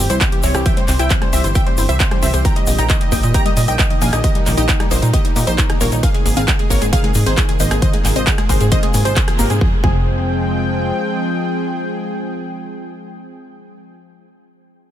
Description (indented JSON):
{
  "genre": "uplifting trance",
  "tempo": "134 BPM",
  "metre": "4/4",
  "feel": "straight",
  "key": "F minor",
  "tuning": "A4 = 442 Hz",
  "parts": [
    { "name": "wide unison pluck", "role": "melody", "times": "0.0-14.0 s", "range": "Eb4 to Bb5", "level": "-23 LUFS", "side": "right 1 dB", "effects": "sidechain pumping, ping-pong delay" },
    { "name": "supersaw stab", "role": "second line", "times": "0.0-14.0 s", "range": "Eb4 to Bb5", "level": "-28 LUFS", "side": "equal", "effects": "sidechain pumping, ping-pong delay" },
    { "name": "lush unison pad", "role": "sustained chords", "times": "0.0-13.8 s", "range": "F3 to G5", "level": "-24 LUFS", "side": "equal", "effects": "chorus, sidechain pumping" },
    { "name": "wide unison pluck", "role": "arpeggios", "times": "0.0-10.0 s", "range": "Eb3 to G4", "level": "-25 LUFS", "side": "left 5 dB", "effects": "sidechain pumping, ping-pong delay" },
    { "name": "plucky analog bass", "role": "bass", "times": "0.0-10.9 s", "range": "F1 to Bb2", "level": "-18 LUFS", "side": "equal", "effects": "sidechain pumping" },
    { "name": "big-room dance drum kit", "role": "drums", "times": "0.1-9.6 s", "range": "handclaps, hi-hat, rim click", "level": "-23 LUFS", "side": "right 1 dB", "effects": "none" },
    { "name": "egg shaker", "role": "percussion", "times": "0.1-9.6 s", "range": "none", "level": "-28 LUFS", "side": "left 3 dB", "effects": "none" },
    { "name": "electronic kick drum", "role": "drums", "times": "0.2-10.0 s", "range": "none", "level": "-16 LUFS", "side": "equal", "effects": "none" }
  ],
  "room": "little or no reverb",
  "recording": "none",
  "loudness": "-14 LUFS",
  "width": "side -11 dB against mid",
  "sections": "0.0-9.6 A section; 9.6-13.2 B section",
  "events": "drop 0.0-9.6; band accent 9.2",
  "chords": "0.0 C; 2.5 Eb/Bb; 6.0 Abadd9; 9.6 Fmadd9"
}